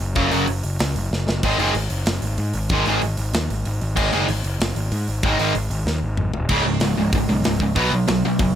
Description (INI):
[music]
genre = punk rock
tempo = 190 BPM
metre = 4/4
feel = straight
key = unclear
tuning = A4 = 441 Hz
[part]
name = fuzz picked electric bass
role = bass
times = 0.0-8.5 s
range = Db1 to Ab2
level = -23 LUFS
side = equal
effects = overdrive
[part]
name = distorted electric guitar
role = riff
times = 0.2-8.5 s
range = Db2 to Cb4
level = -19 LUFS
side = right 1 dB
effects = overdrive
[part]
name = tight metal drum kit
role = drums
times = 0.2-8.5 s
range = crash cymbal, hi-hat, kick drum, snare drum, toms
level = -25 LUFS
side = equal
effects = none
[sound]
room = little or no reverb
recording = none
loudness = -18 LUFS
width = side -10 dB against mid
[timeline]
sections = 0.0-6.5 A section; 6.5-8.6 B section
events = half time 0.0-6.5; drum fill 1.1-1.4, 5.9-6.5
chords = 0.0 Gb5; 1.4 Ab5; 6.5 Db5; 7.8 Cb5